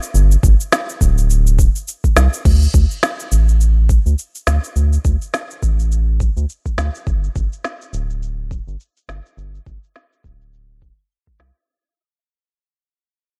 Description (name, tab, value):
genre	organic downtempo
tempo	104 BPM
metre	4/4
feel	swing 57% on 16ths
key	unclear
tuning	A4 = 440 Hz
part	organic electronic drum kit	drums	0.0-11.7 s	cabasa, crash cymbal, snare drum	-23 LUFS	equal	overdrive, low-pass filter on perc, low-pass filter on snare, low-pass filter on cymbals
part	round analog bass	bass	0.1-11.5 s	D1 to D2	-17 LUFS	equal	none
part	electronic kick drum	drums	0.4-11.4 s	none	-19 LUFS	equal	overdrive
room	little or no reverb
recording	dry, gritty hardware recording, transformer saturation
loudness	-16 LUFS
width	mono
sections	0.0-2.5 A section; 2.5-11.7 B section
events	fade-out 2.5-11.7; filter sweep on drum 2.5-11.7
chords	none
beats	| 0.14 0.72 1.30 1.87 | 2.45 3.03 3.60 4.18 | 4.76 5.33 5.91 6.49 | 7.07 7.64 8.22 8.80 | 9.37 9.95 10.53 11.11